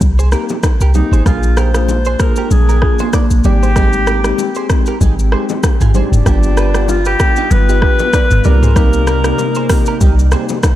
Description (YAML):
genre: afrobeats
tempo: 96 BPM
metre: 4/4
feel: swing 55% on 16ths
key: Bb mixolydian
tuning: A4 = 439 Hz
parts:
  - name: clean 808-style bass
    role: bass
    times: 0.0-10.4 s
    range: F1 to C2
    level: -12 LUFS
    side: equal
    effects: none
  - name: afro-pop drum kit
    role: drums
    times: 0.0-10.8 s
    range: hi-hat, kick drum, rim click, shaker, toms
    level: -15 LUFS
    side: equal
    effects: none
  - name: congas and bongos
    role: percussion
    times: 0.0-10.8 s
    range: none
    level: -24 LUFS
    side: left 6 dB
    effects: none
  - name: direct-recorded clean electric guitar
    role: riff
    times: 0.2-10.5 s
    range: D4 to D5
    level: -25 LUFS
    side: right 6 dB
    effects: analog chorus, analog delay
  - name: tine electric piano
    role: accompaniment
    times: 0.3-10.6 s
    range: Ab3 to Ab4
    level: -22 LUFS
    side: left 1 dB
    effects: medium stereo tremolo
  - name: breathy alto saxophone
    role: melody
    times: 0.9-10.6 s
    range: D4 to C5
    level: -19 LUFS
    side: left 1 dB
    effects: analog delay
  - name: glassy FM pad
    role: sustained chords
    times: 1.3-10.8 s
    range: C3 to D5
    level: -22 LUFS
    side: left 1 dB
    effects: ensemble chorus, built-in reverb
room: light reverb, digital ambience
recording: none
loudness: -10 LUFS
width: side -13 dB against mid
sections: 0.0-1.3 A section; 1.3-10.8 B section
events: none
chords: 0.0 Cm7; 1.3 Bb7; 3.4 Abmaj7; 6.3 G7; 8.4 Cm7